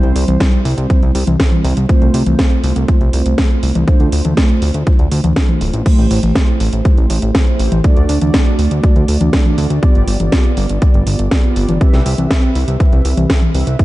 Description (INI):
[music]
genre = italo disco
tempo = 121 BPM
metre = 4/4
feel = straight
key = C major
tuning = A4 = 440 Hz
[part]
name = mellow synth brass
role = stabs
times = 0.0-13.8 s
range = G3 to E5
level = -19 LUFS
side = right 2 dB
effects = chorus, cassette tape, tape echo
[part]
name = fat analog bass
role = bass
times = 0.0-13.8 s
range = D1 to D2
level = -16 LUFS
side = equal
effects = tube saturation
[part]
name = house drum kit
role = drums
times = 0.0-13.8 s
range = crash cymbal, hi-hat, snare drum, toms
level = -19 LUFS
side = left 1 dB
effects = overdrive
[part]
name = electronic kick drum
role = drums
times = 0.4-13.8 s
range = none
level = -12 LUFS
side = equal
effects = overdrive
[sound]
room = digital ambience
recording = dark, warm production, vinyl crackle, nothing above 10.5 kHz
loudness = -11 LUFS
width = side -17 dB against mid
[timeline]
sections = 0.0-5.9 A section; 5.9-13.8 B section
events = none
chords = 0.0 C; 1.9 F/C; 3.9 Dm7; 5.9 Am7; 7.8 D; 9.8 G7; 11.8 Cmaj7